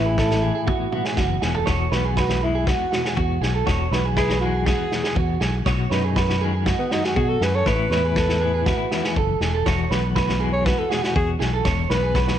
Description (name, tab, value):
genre	highlife guitar band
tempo	120 BPM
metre	4/4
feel	straight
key	E major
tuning	A4 = 440 Hz
part	mellow alto saxophone	melody	0.0-12.4 s	B3 to C#5	-25 LUFS	left 1 dB	none
part	semi-hollow electric guitar	accompaniment	0.0-12.4 s	E2 to F#4	-28 LUFS	left 10 dB	tremolo
part	electric guitar at the edge of break-up	arpeggios	0.0-12.4 s	F#4 to C#5	-26 LUFS	right 10 dB	vibrato effect, slapback echo
part	fingered electric bass	bass	0.0-12.4 s	E1 to B2	-23 LUFS	equal	none
part	vintage drum kit	drums	0.2-12.4 s	kick drum, snare drum, toms	-25 LUFS	equal	none
room	light reverb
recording	1960s-style stereo with parts hard left and right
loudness	-19 LUFS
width	side -10 dB against mid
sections	0.0-1.7 A section; 1.7-12.4 B section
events	drum fill 0.7-1.7; alto saxophone solo 1.7-12.4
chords	0.0 Eadd9; 5.7 B6; 7.7 Eadd9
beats	0.17 0.67 1.17 | 1.67 2.17 2.67 3.17 | 3.67 4.17 4.67 5.17 | 5.66 6.16 6.66 7.16 | 7.66 8.16 8.66 9.16 | 9.66 10.15 10.65 11.15 | 11.65 12.15